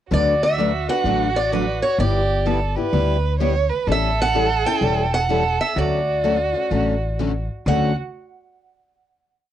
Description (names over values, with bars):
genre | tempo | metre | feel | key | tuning
acoustic string swing (jazz manouche) | 127 BPM | 4/4 | swing 64% on 8ths | D major | A4 = 439 Hz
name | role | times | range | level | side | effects
picked steel-string acoustic guitar | melody | 0.1-8.0 s | B4 to G5 | -22 LUFS | right 1 dB | cassette tape
warm violin | second line | 0.1-7.9 s | F#4 to C#5 | -25 LUFS | right 7 dB | cassette tape
picked steel-string acoustic guitar | accompaniment | 0.1-7.9 s | D3 to B4 | -23 LUFS | left 8 dB | cassette tape
picked steel-string acoustic guitar | accompaniment | 0.1-7.9 s | D3 to B4 | -29 LUFS | right 7 dB | cassette tape
upright bass | bass | 0.1-7.9 s | E1 to D2 | -23 LUFS | equal | none
room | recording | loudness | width
light reverb | home recording on cassette | -18 LUFS | side -11 dB against mid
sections
0.1-7.7 A section; 7.7-9.5 final chord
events
none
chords
0.1 D6; 2.0 G6; 3.9 A7; 5.8 Dmaj7